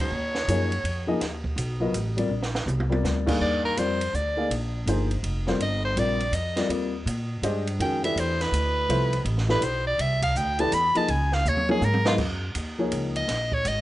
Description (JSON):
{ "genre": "modal jazz", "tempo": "164 BPM", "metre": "3/4", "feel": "swing 64% on 8ths", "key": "unclear", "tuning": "A4 = 440 Hz", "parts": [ { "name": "edgy soprano saxophone", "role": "melody", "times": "0.0-1.1, 3.4-13.8 s", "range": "F4 to Cb6", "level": "-26 LUFS", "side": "equal", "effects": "plate reverb" }, { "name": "warm upright piano", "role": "accompaniment", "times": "0.0-13.3 s", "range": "G2 to E#5", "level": "-27 LUFS", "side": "left 2 dB", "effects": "none" }, { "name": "upright bass", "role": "bass", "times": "0.0-13.8 s", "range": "F1 to Bb2", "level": "-27 LUFS", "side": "equal", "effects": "none" }, { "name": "compact cocktail drum kit", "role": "drums", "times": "0.3-13.8 s", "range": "crash cymbal, hi-hat, kick drum, ride cymbal, snare drum, toms", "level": "-32 LUFS", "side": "right 2 dB", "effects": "none" } ], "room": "light reverb", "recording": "nothing above 10.8 kHz", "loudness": "-23 LUFS", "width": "side -15 dB against mid", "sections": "0.0-3.4 A section; 3.4-12.2 B section; 12.2-13.8 B section", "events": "drum fill 2.3-3.0, 11.5-12.2; soprano saxophone solo 3.4-13.8", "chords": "0.0 Bmaj9; 2.3 A#add9; 3.4 Ebmaj9; 7.8 Fmaj9; 11.1 Dbadd9; 12.2 F#maj9" }